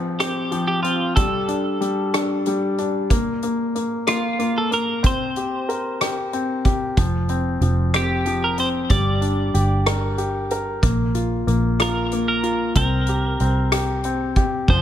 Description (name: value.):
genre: six-eight pop ballad.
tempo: 62 BPM (dotted quarters).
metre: 6/8.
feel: straight.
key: unclear.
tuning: A4 = 438 Hz.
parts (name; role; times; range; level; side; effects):
clear baby grand piano; accompaniment; 0.0-14.8 s; F3 to Bb4; -22 LUFS; left 2 dB; none.
twelve-string electric guitar; melody; 0.2-14.8 s; F4 to D5; -25 LUFS; right 2 dB; vibrato effect, ping-pong delay.
soft-mallet drum kit; drums; 0.2-14.8 s; crash cymbal, hi-hat, kick drum, rim click; -22 LUFS; equal; none.
vintage muted fingered electric bass; bass; 7.0-14.8 s; F1 to C2; -22 LUFS; right 1 dB; none.
room: light reverb, small room ambience.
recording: none.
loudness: -18 LUFS.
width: side -10 dB against mid.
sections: 0.0-14.7 A section.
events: none.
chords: 0.0 F5; 1.2 G5; 3.1 N.C.; 5.0 C5; 7.0 F5; 8.9 Gm; 10.8 Bb5; 12.8 C5.